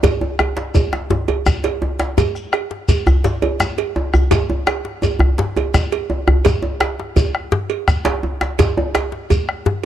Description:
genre	west african traditional, West African drum ensemble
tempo	112 BPM (dotted quarters)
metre	12/8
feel	straight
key	none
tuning	none
part	bombo	percussion	0.0-9.7 s	none	-19 LUFS	equal	none
part	cowbell	percussion	0.0-9.5 s	none	-22 LUFS	right 13 dB	none
part	djembe	percussion	0.0-9.8 s	none	-21 LUFS	left 3 dB	none
part	djembe	percussion	0.0-9.1 s	none	-19 LUFS	equal	none
part	shekere	percussion	0.0-9.5 s	none	-25 LUFS	left 1 dB	none
room	studio ambience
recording	dry, close 1970s-style studio recording, lossy compression artefacts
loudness	-16 LUFS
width	side -11 dB against mid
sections	0.0-9.9 A section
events	none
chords	none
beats	| 0.04 0.57 1.11 1.64 | 2.18 2.71 3.25 3.78 | 4.32 4.85 5.39 5.92 | 6.46 6.99 7.53 8.06 | 8.59 9.13 9.66

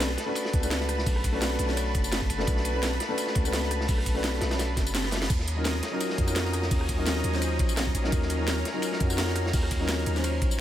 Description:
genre	liquid drum and bass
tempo	170 BPM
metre	4/4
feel	swing 54% on 16ths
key	unclear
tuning	A4 = 440 Hz
part	dark grand piano	accompaniment	0.0-10.6 s	Gb3 to Db5	-31 LUFS	left 1 dB	ping-pong delay
part	lush unison pad	sustained chords	0.0-10.6 s	Db4 to F6	-34 LUFS	equal	chorus, sidechain pumping
part	long sustained 808-style bass	bass	0.0-10.6 s	F#1 to F2	-29 LUFS	equal	none
part	crunchy breakbeat drum kit	drums	0.0-10.5 s	hi-hat, ride cymbal, snare drum	-35 LUFS	equal	high-pass filter on cymbals, high-pass filter on hats, high-pass filter on snare, high-pass filter on room
part	drum and bass drum kit	drums	0.0-10.6 s	crash cymbal, hi-hat, ride cymbal, rim click, snare drum, tambourine	-32 LUFS	right 1 dB	none
part	electronic kick drum	drums	0.5-10.5 s	none	-28 LUFS	equal	none
room	studio ambience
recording	none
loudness	-24 LUFS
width	side -12 dB against mid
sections	0.0-10.6 A section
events	kick drops out 4.9-5.3; drum fill 5.0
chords	0.0 Bm7; 5.3 Ebm7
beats	0.01 0.36 0.71 | 1.06 1.42 1.77 2.12 | 2.48 2.83 3.18 3.54 | 3.89 4.24 4.59 4.95 | 5.30 5.65 6.00 6.36 | 6.71 7.06 7.42 7.77 | 8.12 8.48 8.83 9.18 | 9.54 9.89 10.24 10.59

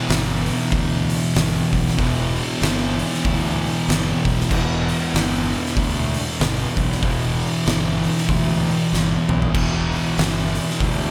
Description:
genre	stoner and doom metal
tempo	95 BPM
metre	4/4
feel	swing 59% on 8ths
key	E minor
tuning	A4 = 439 Hz
part	thick fuzz guitar	riff	0.0-11.1 s	E2 to E3	-26 LUFS	equal	distortion
part	thick fuzz guitar	riff	0.0-11.1 s	E2 to E3	-26 LUFS	equal	distortion
part	fuzz fingered electric bass	bass	0.1-11.1 s	E1 to D2	-28 LUFS	equal	overdrive
part	oversized low-tuned drum kit	drums	0.1-11.0 s	crash cymbal, hi-hat, kick drum, snare drum, toms	-26 LUFS	equal	none
room	light reverb, small room ambience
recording	none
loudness	-20 LUFS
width	mono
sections	0.0-11.1 A section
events	drum fill 8.9-9.5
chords	0.0 Em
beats	0.09 0.72 1.35 | 1.99 2.62 3.25 3.88 | 4.51 5.14 5.77 6.40 | 7.03 7.66 8.29 8.92 | 9.55 10.18 10.81

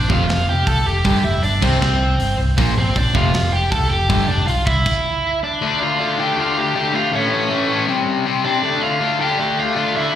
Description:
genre	punk rock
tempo	158 BPM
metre	4/4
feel	straight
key	D minor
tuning	A4 = 440 Hz
part	overdriven electric guitar	melody	0.0-10.2 s	C4 to A5	-20 LUFS	right 1 dB	slapback echo
part	picked electric bass	bass	0.0-4.8 s	F1 to C2	-19 LUFS	equal	none
part	distorted electric guitar	riff	0.1-10.1 s	F2 to D4	-20 LUFS	left 5 dB	distortion, slapback echo
part	overdriven semi-hollow guitar	riff	0.1-4.3 s	F2 to C4	-23 LUFS	right 7 dB	slapback echo
part	tight metal drum kit	drums	0.1-4.9 s	crash cymbal, hi-hat, kick drum, snare drum	-23 LUFS	equal	none
room	small room ambience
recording	live gig heard through the venue's PA, recital hall reverb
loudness	-15 LUFS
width	side -10 dB against mid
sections	0.0-5.6 A section; 5.6-10.2 B section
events	half time 0.0-5.6; stop 4.9-5.6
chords	0.1 F; 1.0 G5; 1.6 C5; 2.6 Bb; 3.1 F; 4.1 G5; 4.7 C; 5.6 Dm; 7.1 A; 7.9 C5; 8.6 Dm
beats	0.29 0.67 | 1.05 1.43 1.81 2.19 | 2.57 2.95 3.33 3.71 | 4.09 4.47 4.85 5.23 | 5.61 5.99 6.37 6.75 | 7.13 7.50 7.88 8.26 | 8.64 9.01 9.39 9.77 | 10.14

